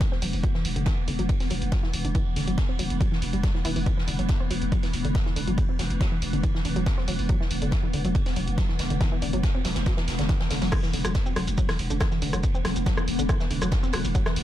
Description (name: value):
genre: driving peak-time techno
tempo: 140 BPM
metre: 4/4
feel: straight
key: unclear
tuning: A4 = 439 Hz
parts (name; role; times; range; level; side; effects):
- swarming drone; drone; 0.0-14.4 s; E3 to B3; -32 LUFS; left 1 dB; built-in reverb, sidechain pumping
- electronic kick drum; drums; 0.0-14.2 s; none; -25 LUFS; equal; none
- punchy analog drum machine; drums; 0.0-14.4 s; crash cymbal, hi-hat, rim click, shaker; -33 LUFS; equal; sidechain pumping on hats, sidechain pumping on cymbals, sidechain pumping on perc
- unplugged drum kit; drums; 0.0-14.4 s; ride cymbal, snare drum; -38 LUFS; right 1 dB; high-pass filter on cymbals, high-pass filter on snare, high-pass filter on room
- analog pluck; riff; 0.1-14.4 s; D3 to C4; -31 LUFS; equal; chorus, sidechain pumping, tape echo
- growling 808-style bass; bass; 0.2-14.4 s; E1; -30 LUFS; equal; overdrive, sidechain pumping, low-pass filter
room: digital ambience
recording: dark, warm production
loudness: -23 LUFS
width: side -12 dB against mid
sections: 0.0-14.4 A section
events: filter sweep on synth arpeggio sound 0.0-14.4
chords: 0.0 E5